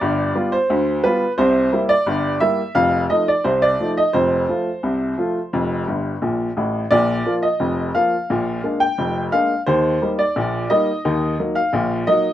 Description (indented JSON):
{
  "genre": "ragtime piano",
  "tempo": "87 BPM",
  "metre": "2/4",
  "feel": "straight",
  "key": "Bb major",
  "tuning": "A4 = 439 Hz",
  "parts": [
    { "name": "clear upright piano", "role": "solo", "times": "0.0-12.3 s", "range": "F1 to G5", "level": "-17 LUFS", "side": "equal", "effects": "none" }
  ],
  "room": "light reverb",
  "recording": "rough home demo mix",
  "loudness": "-17 LUFS",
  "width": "side -12 dB against mid",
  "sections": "0.0-12.3 A section",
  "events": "upright piano fill 5.9-6.9",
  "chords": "0.0 G7; 1.4 C7; 2.8 F7; 4.1 F; 6.9 Bb5; 8.3 Bb7; 9.7 Eb; 11.0 Ebm"
}